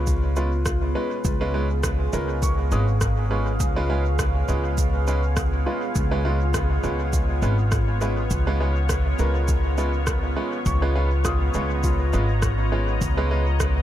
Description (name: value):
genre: ambient dub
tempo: 102 BPM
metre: 4/4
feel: swing 55% on 16ths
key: Db mixolydian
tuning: A4 = 441 Hz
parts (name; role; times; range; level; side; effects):
- deep dark ambient pad; sustained chords; 0.0-13.8 s; Cb4 to Bb5; -30 LUFS; equal; chorus, built-in reverb
- felt-muted upright piano; arpeggios; 0.0-13.8 s; F4 to Eb6; -33 LUFS; left 3 dB; dub echo
- bright upright piano; stabs; 0.0-13.4 s; Ab3 to Cb5; -29 LUFS; right 2 dB; dub echo
- upright bass; bass; 0.0-13.8 s; Ab1 to Db2; -22 LUFS; equal; none
- electronic kick drum; drums; 0.1-13.7 s; none; -26 LUFS; equal; overdrive
- electronic shaker and rim click; drums; 0.1-13.7 s; none; -33 LUFS; right 1 dB; dub echo
room: small room ambience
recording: none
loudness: -20 LUFS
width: side -12 dB against mid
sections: 0.0-13.8 A section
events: none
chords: 0.0 Db7